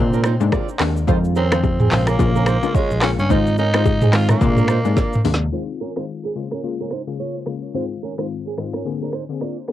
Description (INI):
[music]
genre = afrobeats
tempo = 108 BPM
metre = 4/4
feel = swing 58% on 16ths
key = unclear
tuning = A4 = 440 Hz
[part]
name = growling tenor saxophone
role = melody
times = 0.0-5.2 s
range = Ab3 to F4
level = -24 LUFS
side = right 1 dB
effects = cassette tape, tape echo
[part]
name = analog pluck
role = accompaniment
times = 0.0-9.7 s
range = Ab2 to Ab4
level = -26 LUFS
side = left 8 dB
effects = chorus, cassette tape
[part]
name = bell-like tine electric piano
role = bass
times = 0.0-5.5 s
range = Bb1 to Bb2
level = -19 LUFS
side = equal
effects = auto-pan
[part]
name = flamenco guitar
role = riff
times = 0.1-9.6 s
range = C4 to D5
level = -27 LUFS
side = right 9 dB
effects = cassette tape, tape echo
[part]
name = afro-pop drum kit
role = drums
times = 0.1-9.7 s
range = finger snaps, handclaps, hi-hat, kick drum, rim click, shaker, snare drum, toms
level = -20 LUFS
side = equal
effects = none
[part]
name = bongos and congas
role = percussion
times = 0.4-5.4 s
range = none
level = -27 LUFS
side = left 10 dB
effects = none
[sound]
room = little or no reverb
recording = home recording on cassette, low-pass filter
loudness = -17 LUFS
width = side -12 dB against mid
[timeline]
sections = 0.0-5.5 A section; 5.5-9.7 B section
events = drum fill 5.0-5.5; filter sweep 5.5-9.7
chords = 0.0 Bb9; 1.1 Fm7; 1.9 Bbm7; 3.3 Fm7/Ab; 4.4 Bb9; 5.5 Fm7; 6.4 Bbm7; 7.7 Fm7/Ab; 8.9 Bb9